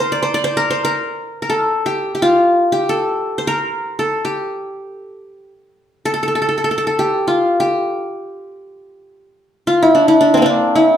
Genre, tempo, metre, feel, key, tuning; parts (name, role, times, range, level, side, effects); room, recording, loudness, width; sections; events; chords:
Turkish makam ensemble; free time; A4 = 439 Hz
qanun; solo; 0.0-11.0 s; Bb3 to D5; -14 LUFS; equal
wet large studio reverb, RT60 1.1 s; band playing live in one room; -14 LUFS; side -10 dB against mid
0.0-11.0 A section